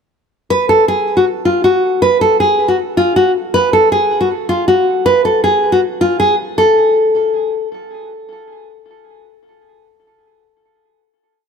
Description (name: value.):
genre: hip hop, trap.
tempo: 158 BPM.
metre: 4/4.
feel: half-time.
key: unclear.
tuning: A4 = 440 Hz.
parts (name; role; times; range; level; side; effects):
nylon-string guitar; solo; 0.5-7.7 s; E#4 to B4; -11 LUFS; equal; tape echo.
room: light reverb.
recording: none.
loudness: -11 LUFS.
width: side -6 dB against mid.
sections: 0.5-6.6 breakdown; 6.6-9.6 final note.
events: none.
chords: none.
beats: | 0.50 0.88 1.26 1.64 | 2.02 2.40 2.78 3.16 | 3.54 3.92 4.30 4.68 | 5.06 5.44 5.82 6.20 | 6.58 6.96 7.34.